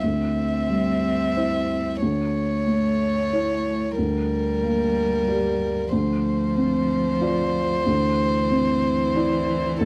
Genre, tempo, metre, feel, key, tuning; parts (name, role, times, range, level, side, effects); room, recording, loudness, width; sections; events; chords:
neoclassical piano and strings; 92 BPM; 3/4; rubato; A4 = 439 Hz
warm violin; melody; 0.0-9.9 s; A4 to E5; -28 LUFS; equal
warm cello; second line; 0.0-9.9 s; E3 to C4; -31 LUFS; equal
felt-muted upright piano; accompaniment; 0.0-9.9 s; D2 to D5; -25 LUFS; equal
light reverb; dry, close 1970s-style studio recording; -23 LUFS; mono
0.0-9.9 A section
0.0 Cadd9/D; 2.0 A/D; 4.0 Gm/D; 5.9 Dm7; 7.9 Cadd9/D